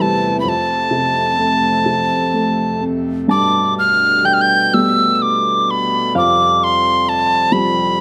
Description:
celtic folk, Celtic slow air; 42 BPM (dotted quarters); 6/8; rubato; G mixolydian; A4 = 440 Hz
bright wooden whistle; melody; 0.0-8.0 s; A5 to G6; -17 LUFS; equal
dark upright piano; accompaniment; 0.0-8.0 s; E2 to C4; -22 LUFS; equal
pedal harmonium; sustained chords; 0.0-8.0 s; E2 to A3; -27 LUFS; equal
concert harp; second line; 3.3-8.0 s; F5 to A5; -24 LUFS; equal
light reverb; close, detailed microphones; -15 LUFS; mono
0.0-3.3 A section; 3.3-8.0 B section
0.5 F; 3.3 Gadd9; 6.2 Fsus2

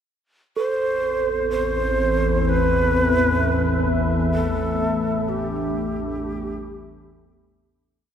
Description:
dark ambient drone; 64 BPM; 4/4; straight; A minor; A4 = 440 Hz
dark analog pad; sustained chords; 0.5-8.1 s; A3 to E5; -26 LUFS; left 1 dB; chorus
organ-like drone; drone; 1.3-8.1 s; A1 to E2; -23 LUFS; left 1 dB; ensemble chorus, built-in reverb
breathy mellow shakuhachi; melody; 0.6-7.1 s; G4 to C5; -23 LUFS; right 1 dB; tape echo
bronze singing bowl; texture; 0.6-8.1 s; A4; -30 LUFS; right 7 dB
wet cathedral reverb, RT60 6.1 s; -19 LUFS; side -8 dB against mid
0.6-8.1 A section
fade-out 4.3-8.1
0.6 Am; 4.3 Em7/A

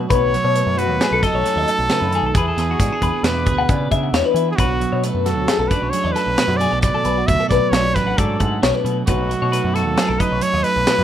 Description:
math rock and midwest emo; 134 BPM; 5/4; straight; A4 = 440 Hz
twelve-string electric guitar; accompaniment; 0.0-11.0 s; F#2 to G#4; -24 LUFS; right 7 dB
growling picked electric bass; bass; 0.0-11.0 s; A1 to E3; -23 LUFS; equal; overdrive
clear trumpet; melody; 0.1-11.0 s; F#4 to E5; -21 LUFS; right 1 dB
twelve-string electric guitar; arpeggios; 0.1-11.0 s; F#4 to F#5; -22 LUFS; left 8 dB; phaser, digital delay
modern studio drum kit; drums; 0.1-11.0 s; hi-hat, kick drum, snare drum; -21 LUFS; equal
light reverb; rough home demo mix; -16 LUFS; side -10 dB against mid
0.0-11.0 A section
0.1 B7; 2.4 E7; 4.6 Bm7; 9.1 B7

